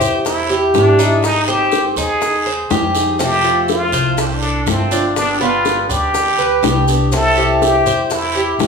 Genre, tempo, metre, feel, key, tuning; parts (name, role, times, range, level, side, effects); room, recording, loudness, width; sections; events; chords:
latin, Cuban son and guajira; 122 BPM; 4/4; straight; C major; A4 = 440 Hz
trumpet with plunger mute; melody; 0.0-8.7 s; C4 to A4; -17 LUFS; equal
picked acoustic archtop guitar; accompaniment; 0.0-8.7 s; C3 to Ab4; -21 LUFS; left 2 dB
Cuban tres; arpeggios; 0.0-8.7 s; B3 to C5; -18 LUFS; right 2 dB
upright bass; bass; 0.0-8.7 s; G1 to F2; -21 LUFS; left 1 dB
guiro; percussion; 0.0-8.7 s; -26 LUFS; right 5 dB
maracas; percussion; 0.0-8.7 s; -30 LUFS; left 3 dB
bongos; percussion; 0.3-8.7 s; -22 LUFS; left 4 dB
wet large studio reverb, RT60 0.9 s; band playing live in one room, studio reverb; -13 LUFS; side -5 dB against mid
0.0-8.7 A section
0.0 Cmaj7; 1.2 Abmaj7; 3.2 F; 5.2 G; 7.1 C